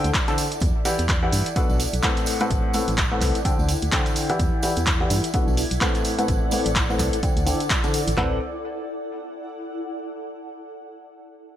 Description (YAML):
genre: piano house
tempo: 127 BPM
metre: 4/4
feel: swing 58% on 16ths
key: A dorian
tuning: A4 = 440 Hz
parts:
  - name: bright upright piano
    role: riff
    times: 0.0-8.4 s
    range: A2 to A5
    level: -25 LUFS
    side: left 1 dB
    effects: sidechain pumping, low-pass filter, tape echo
  - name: organ-like FM bass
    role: bass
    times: 0.0-8.4 s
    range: A1 to G2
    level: -25 LUFS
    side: equal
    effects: sidechain pumping
  - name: punchy analog drum machine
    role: drums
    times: 0.0-8.2 s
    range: handclaps, hi-hat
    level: -26 LUFS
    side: equal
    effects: studio reverb
  - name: tambourine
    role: percussion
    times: 0.0-8.2 s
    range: none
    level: -35 LUFS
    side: right 8 dB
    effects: none
  - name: granular cloud pad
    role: texture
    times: 0.0-10.0 s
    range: E4 to F#5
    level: -30 LUFS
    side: equal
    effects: built-in reverb, sidechain pumping
  - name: punchy analog drum machine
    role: drums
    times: 0.1-8.3 s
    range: handclaps, kick drum, snare drum, toms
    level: -24 LUFS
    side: equal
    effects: studio reverb
room: light reverb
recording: none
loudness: -20 LUFS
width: side -11 dB against mid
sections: 0.0-8.2 A section; 8.2-10.1 B section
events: filter sweep on upright piano 0.0-8.2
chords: 0.0 D7sus4; 0.6 Em9; 1.6 Bm7; 2.3 Am69; 3.5 D7sus4; 4.4 Em9; 5.3 Bm7; 6.0 Am69; 7.2 D7sus4; 8.2 A5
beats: 0.14 | 0.62 1.09 1.56 2.03 | 2.51 2.98 3.45 3.92 | 4.39 4.87 5.34 5.81 | 6.29 6.76 7.23 7.70 | 8.18 8.65 9.12 9.59